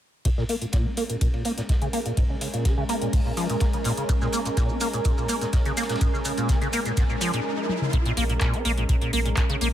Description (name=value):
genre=acid house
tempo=125 BPM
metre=4/4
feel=straight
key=Bb minor pentatonic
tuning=A4 = 440 Hz
part: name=warm analog pad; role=sustained chords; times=0.3-9.7 s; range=Ab3 to Bb4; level=-31 LUFS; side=right 1 dB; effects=chorus, sidechain pumping
part: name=liquid acid bass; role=riff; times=0.3-9.7 s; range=Ab2 to Db4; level=-27 LUFS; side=equal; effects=tube saturation, analog chorus, sidechain pumping, tape echo
part: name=booming analog drum machine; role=drums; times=0.3-9.7 s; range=handclaps, hi-hat, toms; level=-32 LUFS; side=left 2 dB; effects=none
part: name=electronic kick drum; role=drums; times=0.3-9.5 s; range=none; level=-24 LUFS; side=equal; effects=none
part: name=warm soul drum kit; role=drums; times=0.3-7.4 s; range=hi-hat, ride cymbal, snare drum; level=-40 LUFS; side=equal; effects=high-pass filter on cymbals, high-pass filter on hats, high-pass filter on snare, high-pass filter on room
part: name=ethereal airy pad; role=texture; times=1.6-7.5 s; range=Db4 to Ab5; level=-36 LUFS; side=right 1 dB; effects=ensemble chorus, built-in reverb, sidechain pumping
part: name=maracas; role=percussion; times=4.1-7.4 s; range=none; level=-34 LUFS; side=right 2 dB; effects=none
part: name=riser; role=sound effects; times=5.5-7.9 s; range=none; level=-36 LUFS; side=left 1 dB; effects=none
part: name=warm sub bass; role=bass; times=8.2-9.7 s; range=Bb1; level=-25 LUFS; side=equal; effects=sidechain pumping
room=small room reverb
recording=none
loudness=-22 LUFS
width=side -11 dB against mid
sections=0.3-7.9 A section; 7.9-9.7 B section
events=fade-in on ambient pad 0.3-7.9; filter sweep on acid bass 0.3-7.9; riser 5.5-7.9; break 7.5-7.9; drum fill 7.7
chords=0.3 Bbm7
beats=| 0.25 0.73 1.21 1.69 | 2.17 2.65 3.13 3.61 | 4.09 4.57 5.05 5.53 | 6.01 6.49 6.97 7.45 | 7.93 8.41 8.89 9.37